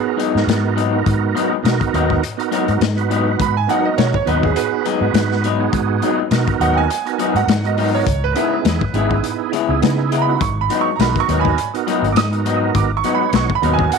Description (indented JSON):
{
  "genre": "straight-eighth soul blues",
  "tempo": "103 BPM",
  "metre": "4/4",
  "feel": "swing 56% on 16ths",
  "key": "G# minor",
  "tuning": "A4 = 441 Hz",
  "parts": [
    { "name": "bright upright piano", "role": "second line", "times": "0.0-14.0 s", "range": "B3 to D#6", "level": "-21 LUFS", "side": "right 13 dB", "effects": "slapback echo" },
    { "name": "tonewheel organ", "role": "accompaniment", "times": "0.0-14.0 s", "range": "B3 to C#5", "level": "-22 LUFS", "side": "right 14 dB", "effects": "slow rotary speaker, overdrive, chorus vibrato" },
    { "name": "electric guitar through a small old amp", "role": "stabs", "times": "0.2-13.8 s", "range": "G#2 to E4", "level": "-22 LUFS", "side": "left 12 dB", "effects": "none" },
    { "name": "crunchy breakbeat drum kit", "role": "drums", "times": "0.2-14.0 s", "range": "hi-hat, kick drum, snare drum", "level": "-21 LUFS", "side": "left 7 dB", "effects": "none" },
    { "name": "vintage muted fingered electric bass", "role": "bass", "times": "0.3-13.9 s", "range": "G#1 to C#3", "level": "-20 LUFS", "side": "equal", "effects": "none" }
  ],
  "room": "moderate spring reverb, RT60 2.2 s",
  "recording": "1960s-style stereo with parts hard left and right",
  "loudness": "-15 LUFS",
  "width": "side -5 dB against mid",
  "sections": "0.0-14.0 A section",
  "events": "upright piano solo 0.0-14.0",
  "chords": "0.0 G#m7; 8.1 C#m7; 10.4 G#m7",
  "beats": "0.48 | 1.06 1.65 2.23 2.81 | 3.40 3.98 4.56 5.15 | 5.73 6.32 6.90 7.48 | 8.07 8.65 9.24 9.82 | 10.41 10.99 11.58 12.16 | 12.75 13.33 13.92"
}